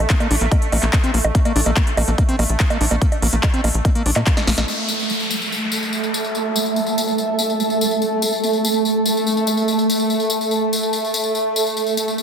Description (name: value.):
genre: psychedelic trance.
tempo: 144 BPM.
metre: 4/4.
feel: straight.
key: unclear.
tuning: A4 = 439 Hz.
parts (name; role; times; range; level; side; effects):
bubbling stepped-filter texture; sustained chords; 0.0-12.2 s; A3; -22 LUFS; right 2 dB; chorus, built-in reverb, sidechain pumping.
tight sequencer bass; bass; 0.0-4.6 s; Bb1 to Bb2; -19 LUFS; equal; none.
overdriven acid bass; riff; 0.1-4.6 s; Bb3 to D4; -24 LUFS; moving between left 6 dB and right 3 dB; auto-pan, sidechain pumping, ping-pong delay.
big-room dance drum kit; drums; 0.1-4.7 s; bongos, handclaps, hi-hat, snare drum; -22 LUFS; right 1 dB; low-pass filter on hats, low-pass filter on perc, low-pass filter on snare, low-pass filter on room.
electronic kick drum; drums; 0.1-4.3 s; none; -17 LUFS; equal; none.
tambourine; percussion; 4.7-12.2 s; none; -24 LUFS; left 4 dB; none.
downlifter; sound effects; 4.7-8.0 s; none; -26 LUFS; equal; none.
granular cloud pad; texture; 5.7-12.2 s; A4 to A5; -23 LUFS; right 1 dB; built-in reverb, sidechain pumping.
room: moderate lush hall reverb, RT60 1.9 s.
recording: dense, heavily limited modern master.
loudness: -16 LUFS.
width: side -7 dB against mid.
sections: 0.0-4.7 A section; 4.7-12.2 B section.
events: drum fill 4.4-4.7; band accent 4.6; filter sweep on synth texture 4.7-12.2.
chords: 0.0 Bbmaj7(no3); 4.7 A5.